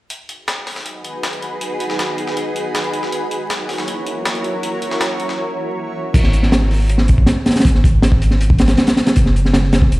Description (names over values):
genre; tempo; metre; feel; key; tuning
drum and bass, jungle; 159 BPM; 4/4; straight; G# minor; A4 = 440 Hz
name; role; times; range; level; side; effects
granular cloud pad; sustained chords; 0.9-6.1 s; D#4 to C#5; -22 LUFS; equal; built-in reverb
breakbeat sampler-style drum kit; drums; 0.1-5.4 s; hi-hat, snare drum; -24 LUFS; left 1 dB; high-pass filter on hats, high-pass filter on snare, high-pass filter on room
saturated sub bass; bass; 6.1-10.0 s; E1 to G#1; -14 LUFS; equal; none
crunchy breakbeat drum kit; drums; 6.1-10.0 s; crash cymbal, hi-hat, kick drum, snare drum; -13 LUFS; equal; none
room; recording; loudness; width
light reverb, studio ambience; played on a big sound system in a bare room, stone room reverb, vinyl crackle; -14 LUFS; side -19 dB against mid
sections
0.1-6.1 A section; 6.1-10.0 B section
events
break 5.4-6.1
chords
0.1 G#m7; 3.1 F#7; 6.1 N.C.